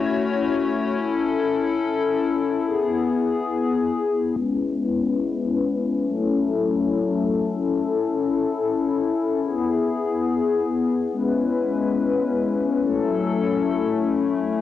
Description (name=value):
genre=hip hop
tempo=free time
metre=none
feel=none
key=unclear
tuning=A4 = 441 Hz
part: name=hollow soft pad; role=solo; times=0.0-14.6 s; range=F#3 to C#5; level=-20 LUFS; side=left 4 dB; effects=chorus, low-pass filter, cassette tape
room=moderate spring reverb, RT60 1.1 s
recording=home recording on cassette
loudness=-20 LUFS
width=side -12 dB against mid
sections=0.0-4.4 A section; 4.4-14.6 B section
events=filter sweep on analog synth pad 4.4-14.6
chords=0.0 F#m7; 1.0 A; 2.7 E; 4.4 C#m7; 6.1 F#m7; 7.7 A; 9.4 E; 11.1 C#m7; 12.8 F#m7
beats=free time